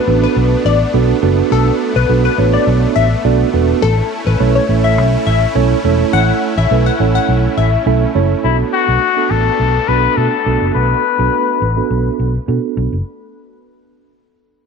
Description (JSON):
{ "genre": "pop", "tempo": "104 BPM", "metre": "4/4", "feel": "straight", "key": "B minor", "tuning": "A4 = 440 Hz", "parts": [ { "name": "glassy wavetable pluck", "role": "melody", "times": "0.0-7.7 s", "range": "A4 to F#5", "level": "-18 LUFS", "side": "left 12 dB", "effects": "chorus, slapback echo" }, { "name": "supersaw pad", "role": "sustained chords", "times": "0.0-13.0 s", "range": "A3 to E4", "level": "-24 LUFS", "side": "equal", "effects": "low-pass filter" }, { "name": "mellow tine electric piano", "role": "accompaniment", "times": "0.1-12.9 s", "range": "A3 to E5", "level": "-17 LUFS", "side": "right 15 dB", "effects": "medium stereo tremolo, low-pass filter" }, { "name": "vintage muted fingered electric bass", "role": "bass", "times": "0.1-13.0 s", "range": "E1 to B2", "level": "-15 LUFS", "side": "left 1 dB", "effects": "none" }, { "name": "clear flugelhorn", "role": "melody", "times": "8.4-12.4 s", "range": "E4 to B4", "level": "-16 LUFS", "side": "left 12 dB", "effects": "low-pass filter, slapback echo" } ], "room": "light reverb, digital ambience", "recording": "1960s-style stereo with parts hard left and right", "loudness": "-11 LUFS", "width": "side -5 dB against mid", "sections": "0.0-8.4 A section; 8.4-13.1 B section", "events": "drop 0.0-8.4; filter sweep 8.4-13.1", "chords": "0.0 Bm7; 3.8 A; 8.4 Bm7" }